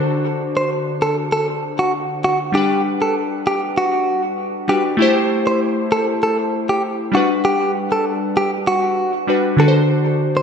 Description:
afrobeats; 98 BPM; 4/4; straight; A dorian; A4 = 442 Hz
glassy digital keys; accompaniment; 0.0-10.4 s; D3 to F#5; -19 LUFS; left 1 dB; chorus
direct-recorded clean electric guitar; melody; 0.6-10.4 s; F#4 to C5; -19 LUFS; right 1 dB; spring reverb, diffuse ambient delay
wet lush hall reverb, RT60 2.5 s; dreamy mix soaked in reverb; -16 LUFS; side -6 dB against mid
0.0-5.0 A section; 5.0-10.4 B section
0.0 D7; 2.5 Gmaj7; 5.0 Am7; 7.1 Gmaj7; 9.6 D7
| 0.10 0.71 1.32 1.94 | 2.55 3.16 3.77 4.39 | 5.00 5.61 6.22 6.83 | 7.45 8.06 8.67 9.28 | 9.90

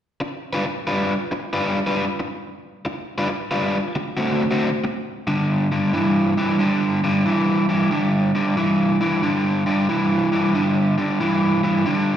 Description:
blues; 91 BPM; 4/4; swing 66% on 8ths; G mixolydian; A4 = 442 Hz
overdriven electric guitar; solo; 0.2-12.2 s; G2 to B4; -18 LUFS; equal; slapback echo
wet club reverb, RT60 0.6 s; live gig heard through the venue's PA, recital hall reverb; -18 LUFS; side -10 dB against mid
0.0-5.3 A section; 5.3-12.2 B section
0.0 G7; 3.9 D7; 5.3 G5
0.64 1.30 1.97 | 2.63 3.29 3.95 4.61 | 5.27 5.93 6.59 7.25 | 7.91 8.57 9.23 9.89 | 10.55 11.21 11.87

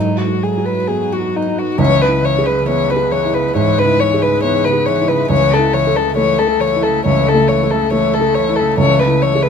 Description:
neoclassical piano and strings; 68 BPM; 4/4; rubato; C# minor; A4 = 440 Hz
dark violin; melody; 0.0-9.5 s; D#4 to C#5; -15 LUFS; left 6 dB
dark cello; second line; 0.0-9.5 s; C#3 to F#3; -23 LUFS; right 6 dB
felt-muted upright piano; accompaniment; 0.0-9.5 s; C#2 to A4; -16 LUFS; right 2 dB
deep dark ambient pad; sustained chords; 0.0-9.5 s; F#3 to B4; -26 LUFS; right 3 dB; chorus, built-in reverb
light reverb; minimal, uncompressed stereo recording; -12 LUFS; side -7 dB against mid
0.0-1.8 A section; 1.8-9.5 A section
0.0 G#m7; 1.8 C#m7; 5.3 A/C#; 8.8 C#m7
0.88 | 1.79 2.68 3.56 4.44 | 5.31 6.17 7.05 7.92 | 8.79

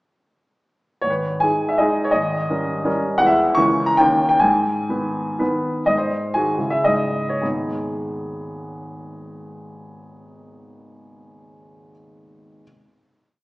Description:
classical, romantic triple-time dance for piano with dotted rhythms; 94-179 BPM; 3/4; rubato; G# minor; A4 = 442 Hz
clear baby grand piano; solo; 1.0-12.6 s; G#1 to C#6; -18 LUFS; equal
wet recital hall reverb, RT60 1.4 s; heard from further back in the room, small speaker sound; -17 LUFS; side -21 dB against mid
1.0-5.9 A section; 5.9-7.4 coda; 7.4-10.6 final chord
slowing down 3.8-7.4
1.0 G#5; 2.2 D#7/G#; 3.2 E; 3.6 A#dim/C#; 4.0 D#7; 4.4 G#m; 5.9 G#7; 6.6 C#m; 7.4 G#m
| 1.04 1.43 1.81 | 2.16 2.51 2.87 | 3.21 3.58 3.98 | 4.42 4.90 5.40 | 5.87 6.33 6.84 | 7.43 7.97 8.50 | 9.01 9.57 10.12

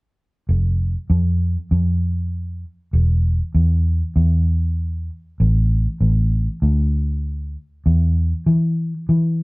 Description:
blues; 98 BPM; 4/4; swing 53% on 16ths; A4 = 440 Hz
vintage muted fingered electric bass; bass; 0.5-9.4 s; E1 to E3; -16 LUFS; equal
light reverb; band playing live in one room; -17 LUFS; side -26 dB against mid
0.5-9.4 A section
| 0.48 1.10 1.71 2.33 | 2.94 3.56 4.17 4.79 | 5.40 6.01 6.63 7.24 | 7.86 8.47 9.09

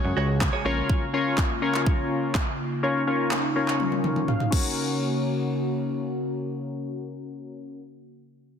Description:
dance-pop; 124 BPM; 4/4; straight; F# major; A4 = 440 Hz
warm analog keys; accompaniment; 0.0-7.8 s; C#4 to G#5; -27 LUFS; left 4 dB; chorus, sidechain pumping, low-pass filter
airy breathy pad; sustained chords; 0.0-7.8 s; C#3 to F#4; -30 LUFS; equal; chorus, sidechain pumping, low-pass filter
direct-recorded clean electric guitar; riff; 0.0-0.8 s; E#4 to C#5; -32 LUFS; right 8 dB; lush chorus, low-pass filter
downlifter; sound effects; 0.0-0.9 s; barely audible
fat analog bass; bass; 0.1-0.8 s; A#1 to F#2; -26 LUFS; right 1 dB; sidechain pumping
pop drum kit; drums; 0.4-4.6 s; crash cymbal, handclaps, kick drum, toms; -26 LUFS; equal
moderate plate reverb, RT60 1.9 s; dense, heavily limited modern master; -23 LUFS; side -7 dB against mid
0.0-4.8 A section; 4.8-8.6 B section
filter sweep 0.0-4.8; synth keys fill 0.2-0.9, 4.0-4.8; drum fill 3.8-4.8
0.0 F#sus2; 0.7 A#m; 4.5 F#
0.41 | 0.90 1.38 1.86 2.35 | 2.83 3.31 3.80 4.28 | 4.77 5.25 5.74 6.22 | 6.70 7.19 7.67

